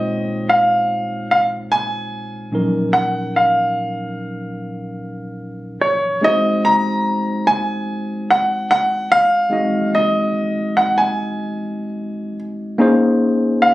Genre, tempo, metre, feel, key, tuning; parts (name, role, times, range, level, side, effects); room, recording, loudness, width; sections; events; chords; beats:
R&B; 73 BPM; 4/4; swing 54% on 16ths; A4 = 443 Hz
warm baby grand piano; melody; 0.0-13.7 s; Db5 to Bb5; -16 LUFS; equal; slapback echo
tine electric piano; accompaniment; 0.0-13.7 s; Bb2 to G5; -20 LUFS; left 1 dB
light reverb; recorded on a phone in the room, club reverb, compression; -15 LUFS; side -17 dB against mid
0.0-6.2 A section; 6.2-13.7 B section
0.0 Fm7/Bb; 2.5 Ebm9/Bb; 6.2 Ab7; 12.8 Bbm11
0.47 1.29 2.11 | 2.94 3.76 4.58 5.40 | 6.22 7.05 7.87 8.69 | 9.51 10.33 11.16 11.98 | 12.80 13.62